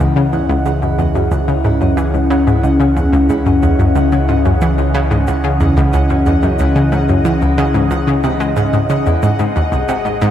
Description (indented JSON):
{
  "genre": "ambient, sequencer-driven space music",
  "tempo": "91 BPM",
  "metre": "4/4",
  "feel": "straight",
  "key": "C# minor",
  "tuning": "A4 = 440 Hz",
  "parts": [
    { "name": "phased analog pad", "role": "sustained chords", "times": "0.0-10.3 s", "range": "C#3 to F#5", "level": "-16 LUFS", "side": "left 1 dB", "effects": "phaser, chorus" },
    { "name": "electric guitar at the edge of break-up", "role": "arpeggios", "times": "0.0-10.3 s", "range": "B#3 to D#5", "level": "-32 LUFS", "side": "right 2 dB", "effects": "auto-pan, ping-pong delay" },
    { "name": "analog pluck", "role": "riff", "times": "0.0-10.3 s", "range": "B#1 to G#3", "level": "-15 LUFS", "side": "equal", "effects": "chorus, ping-pong delay" },
    { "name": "warm sub bass", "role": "bass", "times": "0.0-10.3 s", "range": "G#1 to C#2", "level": "-19 LUFS", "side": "equal", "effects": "none" },
    { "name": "shaker and woodblock", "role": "percussion", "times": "0.0-10.3 s", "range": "none", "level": "-46 LUFS", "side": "right 2 dB", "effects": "overdrive, ping-pong delay" },
    { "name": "pulsing gated texture", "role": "texture", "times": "0.0-10.3 s", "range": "F#5", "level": "-24 LUFS", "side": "equal", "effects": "chorus, built-in reverb" }
  ],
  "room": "wet spring reverb, RT60 2.6 s",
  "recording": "echo-heavy mix",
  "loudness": "-12 LUFS",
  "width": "side -10 dB against mid",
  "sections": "0.0-10.3 A section",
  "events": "fade-in on clean electric guitar 0.0-10.3; fade-in on drum 0.0-10.3",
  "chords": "0.0 C#madd9; 9.2 G#7"
}